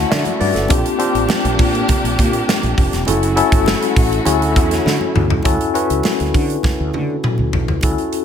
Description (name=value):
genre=polished 1980s jazz-funk pop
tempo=101 BPM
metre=4/4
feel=straight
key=unclear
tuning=A4 = 437 Hz
part: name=tine electric piano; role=accompaniment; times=0.0-8.2 s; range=A3 to C#6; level=-18 LUFS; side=left 3 dB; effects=medium stereo tremolo, wide subtle chorus
part: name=warm symphonic string section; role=sustained chords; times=0.0-5.4 s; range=D3 to G4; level=-23 LUFS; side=equal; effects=none
part: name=mellow fretless electric bass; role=bass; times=0.0-7.9 s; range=E1 to D3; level=-20 LUFS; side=right 1 dB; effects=analog chorus
part: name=modern studio drum kit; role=drums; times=0.1-8.2 s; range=hi-hat, kick drum, snare drum, toms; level=-18 LUFS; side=right 1 dB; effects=gated reverb
part: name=congas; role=percussion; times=0.1-8.0 s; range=none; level=-32 LUFS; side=right 4 dB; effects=none
room=light reverb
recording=none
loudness=-14 LUFS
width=side -8 dB against mid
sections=0.0-5.5 A section; 5.5-7.8 B section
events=tine electric piano fill 0.0-0.7; drum fill 4.9-5.5, 6.6-7.8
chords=0.0 Dmaj7; 0.7 Bb69; 3.1 F#m7; 4.3 Dmaj9